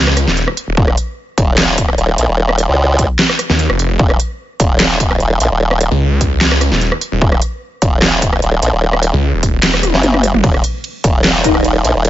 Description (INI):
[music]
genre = heavy wobble dubstep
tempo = 149 BPM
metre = 4/4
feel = half-time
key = Eb minor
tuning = A4 = 440 Hz
[part]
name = snarling distorted saw bass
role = bass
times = 0.0-0.8, 3.5-10.4 s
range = Eb1 to Eb2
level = -14 LUFS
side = equal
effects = distortion, overdrive
[part]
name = dubstep drum kit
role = drums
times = 0.1-12.1 s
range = handclaps, hi-hat, ride cymbal, rim click, snare drum, toms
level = -15 LUFS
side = equal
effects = none
[part]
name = formant-sweep wobble bass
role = bass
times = 0.8-12.1 s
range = Eb1 to Db2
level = -13 LUFS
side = equal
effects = chorus, overdrive
[part]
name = electronic kick drum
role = drums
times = 0.8-11.5 s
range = none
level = -15 LUFS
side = equal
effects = none
[part]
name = orchestra-hit-like synth stab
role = stabs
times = 11.4-11.5 s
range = Eb4 to Eb5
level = -16 LUFS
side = left 3 dB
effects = built-in reverb, digital delay
[sound]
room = little or no reverb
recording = nothing above 7.6 kHz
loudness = -11 LUFS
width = side -13 dB against mid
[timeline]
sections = 0.0-12.1 A section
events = drum fill 9.8-10.4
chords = 0.0 Eb5